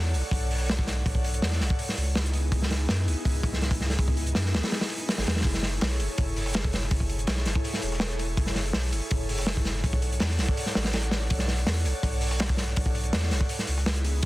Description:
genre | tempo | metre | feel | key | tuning
drum and bass, jungle | 164 BPM | 4/4 | straight | F# minor | A4 = 440 Hz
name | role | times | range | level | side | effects
airy breathy pad | sustained chords | 0.0-14.3 s | B3 to F#5 | -35 LUFS | equal | chorus, vintage 12-bit sampler grit
soft dub sub bass | bass | 0.0-14.3 s | E1 to F#2 | -28 LUFS | equal | none
crunchy breakbeat drum kit | drums | 0.1-14.3 s | hi-hat, kick drum, snare drum | -27 LUFS | equal | none
dusty soul sampler-style drum kit | drums | 5.4-14.3 s | hi-hat, snare drum | -41 LUFS | left 1 dB | none
room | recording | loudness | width
small room ambience | dense, heavily limited modern master | -24 LUFS | side -18 dB against mid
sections
0.0-14.3 A section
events
none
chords
0.0 Bm7; 1.8 C#m7; 5.4 F#m7; 9.8 Bm7; 13.5 C#m7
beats
0.33 0.69 | 1.06 1.42 1.79 2.16 | 2.52 2.89 3.25 3.62 | 3.98 4.35 4.72 5.08 | 5.45 5.82 6.18 6.55 | 6.91 7.28 7.64 8.01 | 8.38 8.74 9.11 9.47 | 9.84 10.21 10.57 10.94 | 11.30 11.67 12.03 12.40 | 12.77 13.13 13.50 13.86 | 14.23

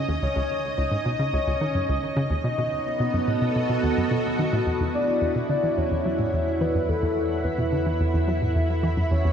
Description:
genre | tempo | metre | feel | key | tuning
ambient, sequencer-driven space music | 108 BPM | 4/4 | straight | unclear | A4 = 440 Hz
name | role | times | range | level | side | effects
string machine, full ensemble | sustained chords | 0.0-9.3 s | B3 to B5 | -26 LUFS | right 1 dB | ensemble chorus, shimmer reverb
hollow square pluck | riff | 0.1-9.3 s | C#2 to F#3 | -26 LUFS | equal | chorus, cassette tape, ping-pong delay
soft octave-layered synth lead | melody | 0.2-9.3 s | A4 to D#5 | -28 LUFS | left 2 dB | chorus, shimmer reverb, ping-pong delay
round analog bass | bass | 4.7-9.3 s | E2 | -27 LUFS | equal | none
room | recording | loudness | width
wet cathedral reverb, RT60 6.3 s | in a vast, echoing space | -22 LUFS | side -8 dB against mid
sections
0.0-4.7 A section; 4.7-9.3 B section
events
none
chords
0.0 C#sus2; 2.4 B7; 4.7 Esus2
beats
| 0.22 0.78 1.33 1.89 | 2.45 3.00 3.56 4.11 | 4.67 5.22 5.78 6.33 | 6.89 7.45 8.00 8.56 | 9.11

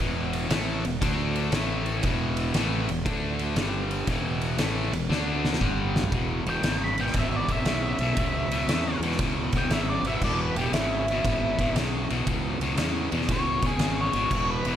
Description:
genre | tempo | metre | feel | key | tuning
blues rock power trio and southern rock | 117 BPM | 4/4 | swing 66% on 8ths | unclear | A4 = 440 Hz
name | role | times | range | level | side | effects
distorted electric guitar | riff | 0.0-14.8 s | E2 to D4 | -28 LUFS | left 1 dB | distortion
fuzz fingered electric bass | bass | 0.0-14.8 s | E1 to E2 | -30 LUFS | equal | overdrive
oversized low-tuned drum kit | drums | 0.3-14.7 s | crash cymbal, kick drum, ride cymbal, snare drum, toms | -29 LUFS | equal | none
octave-fuzz lead guitar | melody | 6.5-14.8 s | E4 to B5 | -30 LUFS | equal | distortion
room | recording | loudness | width
light reverb | none | -24 LUFS | side -10 dB against mid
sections
0.0-6.1 A section; 6.1-14.8 B section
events
drum fill 5.1-6.1; lead electric guitar solo 6.1-14.8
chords
0.0 E5; 1.0 D5; 1.5 A5; 2.0 E5; 3.1 D5; 3.6 G5; 4.1 E5; 5.1 D5; 5.6 G5; 6.1 E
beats
| 0.00 0.51 1.02 1.53 | 2.04 2.55 3.06 3.57 | 4.08 4.59 5.10 5.61 | 6.12 6.64 7.15 7.66 | 8.17 8.69 9.20 9.71 | 10.22 10.73 11.25 11.76 | 12.27 12.79 13.30 13.81 | 14.32

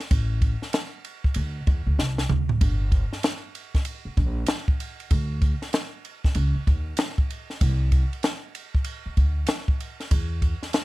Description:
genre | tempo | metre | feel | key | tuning
hip hop, jazz-hop | 96 BPM | 4/4 | swing 63% on 16ths | unclear | A4 = 440 Hz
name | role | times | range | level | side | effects
compact cocktail drum kit | drums | 0.0-10.8 s | hi-hat, kick drum, ride cymbal, snare drum, toms | -24 LUFS | equal | none
upright bass | bass | 0.1-10.5 s | G1 to E2 | -24 LUFS | equal | none
room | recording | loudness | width
little or no reverb | none | -22 LUFS | side -19 dB against mid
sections
0.0-2.6 A section; 2.6-10.8 A section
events
drum fill 2.0-2.6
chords
none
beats
| 0.11 0.74 1.36 1.99 | 2.61 3.24 3.86 4.49 | 5.11 5.74 6.36 6.99 | 7.61 8.24 8.86 9.49 | 10.11 10.74

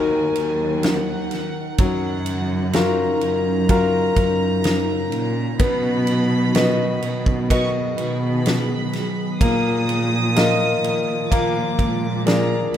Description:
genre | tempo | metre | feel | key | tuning
pop ballad | 63 BPM | 4/4 | straight | unclear | A4 = 440 Hz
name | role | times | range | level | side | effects
warm studio violin section | second line | 0.0-12.8 s | Gb5 to Eb6 | -29 LUFS | right 2 dB | digital delay
clear grand piano | accompaniment | 0.0-12.8 s | Eb3 to D#5 | -22 LUFS | left 3 dB | none
glassy FM pad | sustained chords | 0.0-12.8 s | Db3 to Bb4 | -26 LUFS | right 1 dB | ensemble chorus, built-in reverb
dark chamber cello section | bass | 0.0-12.8 s | Eb2 to B2 | -23 LUFS | right 1 dB | none
huge arena drum kit | drums | 0.4-12.8 s | kick drum, ride cymbal, snare drum | -23 LUFS | right 1 dB | none
room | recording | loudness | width
small room ambience | rough home demo mix | -18 LUFS | side -10 dB against mid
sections
0.0-12.8 A section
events
none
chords
0.0 Ebm; 1.8 Gbmaj7; 5.6 B; 9.4 Bbsus4; 11.3 Bb7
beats
0.84 | 1.79 2.74 3.69 4.65 | 5.60 6.55 7.50 8.46 | 9.41 10.36 11.31 12.27

